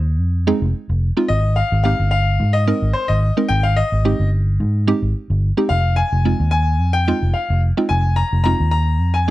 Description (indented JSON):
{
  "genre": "dance-pop",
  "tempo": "109 BPM",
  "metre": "4/4",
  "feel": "straight",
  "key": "F minor",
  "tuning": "A4 = 440 Hz",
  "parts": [
    { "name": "mallet-like synth pluck", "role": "accompaniment", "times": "0.0-9.3 s", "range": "Ab3 to Bb4", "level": "-20 LUFS", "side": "right 2 dB", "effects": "chorus" },
    { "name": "vintage muted fingered electric bass", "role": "bass", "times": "0.0-9.3 s", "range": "F1 to Ab2", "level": "-17 LUFS", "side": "equal", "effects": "none" },
    { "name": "clear grand piano", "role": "melody", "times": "1.3-9.3 s", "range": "C5 to Bb5", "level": "-21 LUFS", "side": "left 3 dB", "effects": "slapback echo" }
  ],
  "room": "little or no reverb",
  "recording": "dry, close 1970s-style studio recording",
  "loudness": "-15 LUFS",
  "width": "side -16 dB against mid",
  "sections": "0.0-9.3 A section",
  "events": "none",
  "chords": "0.0 Fm7; 1.3 Abmaj7; 5.7 Fm7",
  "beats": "0.20 0.75 | 1.30 1.85 2.40 2.95 | 3.50 4.05 4.60 5.15 | 5.70 6.25 6.80 7.35 | 7.90 8.45 9.01"
}